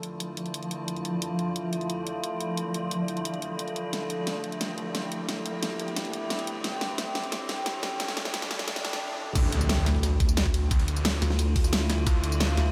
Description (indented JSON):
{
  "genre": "dark technical drum and bass",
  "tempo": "177 BPM",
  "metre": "4/4",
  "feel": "straight",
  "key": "D minor",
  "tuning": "A4 = 440 Hz",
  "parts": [
    { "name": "metallic inharmonic drone", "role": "sustained chords", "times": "0.0-12.7 s", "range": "D3 to G4", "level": "-36 LUFS", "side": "equal", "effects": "chorus, built-in reverb, sidechain pumping" },
    { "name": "dubstep drum kit", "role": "drums", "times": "0.0-12.6 s", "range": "crash cymbal, hi-hat, snare drum, tambourine", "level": "-34 LUFS", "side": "equal", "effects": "none" },
    { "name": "riser, swell and impact", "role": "sound effects", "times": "0.1-10.7 s", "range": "none", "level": "-40 LUFS", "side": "equal", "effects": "none" },
    { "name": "granular cloud pad", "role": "texture", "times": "0.0-9.0 s", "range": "F3 to A5", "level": "-38 LUFS", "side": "equal", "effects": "built-in reverb, ensemble chorus, sidechain pumping" },
    { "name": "snarling distorted saw bass", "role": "bass", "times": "9.4-12.6 s", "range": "D2", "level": "-30 LUFS", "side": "equal", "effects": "distortion, overdrive, sidechain pumping" },
    { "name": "breakbeat sampler-style drum kit", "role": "drums", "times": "9.4-12.7 s", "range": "hi-hat, ride cymbal, snare drum", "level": "-43 LUFS", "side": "equal", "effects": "none" },
    { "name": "electronic kick drum", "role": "drums", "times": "9.4-12.1 s", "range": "none", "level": "-27 LUFS", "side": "equal", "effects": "none" },
    { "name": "pulsing pluck wobble bass", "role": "bass", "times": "9.9-12.7 s", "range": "D2", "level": "-27 LUFS", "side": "equal", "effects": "chorus" }
  ],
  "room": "moderate huge ambient reverb, RT60 4.9 s",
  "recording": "dreamy mix soaked in reverb, high-pass filter",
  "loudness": "-29 LUFS",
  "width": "mono",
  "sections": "0.0-9.4 A section; 9.4-12.7 B section",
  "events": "build-up 0.0-9.4; riser 0.1-9.0; filter sweep 0.0-9.4; drum fill 3.9-9.0; swell 8.7-9.4; drop 9.4-12.7; impact 9.4-10.7",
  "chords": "0.0 Dm",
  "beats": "0.20 0.54 0.88 | 1.22 1.56 1.90 2.24 | 2.58 2.91 3.25 3.59 | 3.93 4.27 4.61 4.95 | 5.29 5.63 5.96 6.30 | 6.64 6.98 7.32 7.66 | 8.00 8.34 8.68 9.02 | 9.36 9.69 10.03 10.37 | 10.71 11.05 11.39 11.73 | 12.07 12.40"
}